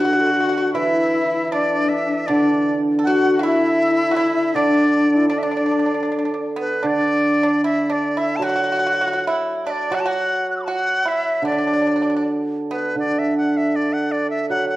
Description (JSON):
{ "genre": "chinese traditional, Chinese chamber ensemble", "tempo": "79 BPM", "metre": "2/4", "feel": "rubato", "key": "D gong mode", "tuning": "A4 = 441 Hz", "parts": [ { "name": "bright dizi", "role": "melody", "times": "0.0-14.8 s", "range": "B4 to F#6", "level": "-22 LUFS", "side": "equal", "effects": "none" }, { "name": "breathy bright low xiao", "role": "second line", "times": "0.0-6.4 s", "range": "D4 to A4", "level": "-23 LUFS", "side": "left 2 dB", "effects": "none" }, { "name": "pipa", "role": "second line", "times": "0.0-13.0 s", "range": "B3 to A4", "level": "-27 LUFS", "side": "right 2 dB", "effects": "none" }, { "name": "rich horsehead fiddle", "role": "second line", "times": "0.0-6.4 s", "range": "D4 to F#4", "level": "-23 LUFS", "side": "left 2 dB", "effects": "none" }, { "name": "hammered dulcimer", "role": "accompaniment", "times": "0.0-14.8 s", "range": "D3 to F#3", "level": "-21 LUFS", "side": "right 2 dB", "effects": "none" } ], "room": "wet recital hall reverb, RT60 1.3 s", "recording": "worn, warbling old tape, cassette tape, warbly pitch drift", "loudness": "-17 LUFS", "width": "side -16 dB against mid", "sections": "0.0-6.8 A section; 6.8-14.8 B section", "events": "none", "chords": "none", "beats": "| 0.74 1.52 | 2.30 3.06 | 3.82 4.56 | 5.31 6.07 | 6.85 7.64 | 8.41 9.17 | 9.92 10.66 | 11.42 12.18 | 12.97 13.75 | 14.50" }